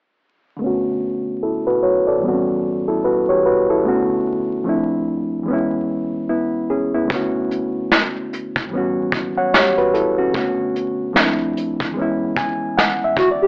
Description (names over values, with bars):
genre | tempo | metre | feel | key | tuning
lo-fi hip hop | 74 BPM | 4/4 | swing 60% on 16ths | B minor | A4 = 437 Hz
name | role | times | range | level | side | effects
bright reed electric piano | accompaniment | 0.6-13.5 s | A2 to G#5 | -17 LUFS | equal | low-pass filter
vintage brush drum kit | drums | 7.1-13.4 s | hi-hat, kick drum, snare drum | -18 LUFS | equal | none
hollow clarinet-like synth lead | melody | 13.2-13.5 s | F#4 to G4 | -14 LUFS | equal | chorus
room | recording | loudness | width
moderate studio reverb, RT60 0.5 s | vinyl crackle, AM radio sound | -16 LUFS | side -30 dB against mid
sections
0.6-13.5 A section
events
filter sweep on reed electric piano 0.6-13.5; reed electric piano fill 12.0-13.5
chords
0.6 Bm9; 2.2 A13; 3.9 Bm9; 4.7 Dm7; 5.5 C#m7; 7.1 Bm9; 8.7 A13; 10.3 Bm9; 11.2 Dm7; 12.0 C#m7